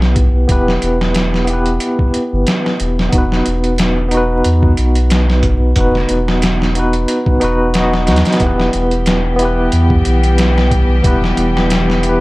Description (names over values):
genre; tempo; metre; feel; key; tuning
trip hop; 91 BPM; 4/4; swing 55% on 16ths; E harmonic minor; A4 = 440 Hz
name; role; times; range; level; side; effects
tine electric piano; accompaniment; 0.0-12.2 s; B3 to D#5; -16 LUFS; equal; tremolo, vintage 12-bit sampler grit, tape echo
warm sub bass; bass; 0.0-12.2 s; E1 to E2; -15 LUFS; equal; none
trip hop sampler-style drum kit; drums; 0.0-12.2 s; hi-hat, kick drum, snare drum; -16 LUFS; equal; overdrive
rich chamber string section; sustained chords; 8.4-12.2 s; E3 to G4; -20 LUFS; left 1 dB; none
room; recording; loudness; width
light reverb, digital ambience; vinyl crackle; -11 LUFS; side -20 dB against mid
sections
0.0-12.2 A section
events
none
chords
0.0 Em; 3.1 B/E; 8.4 Em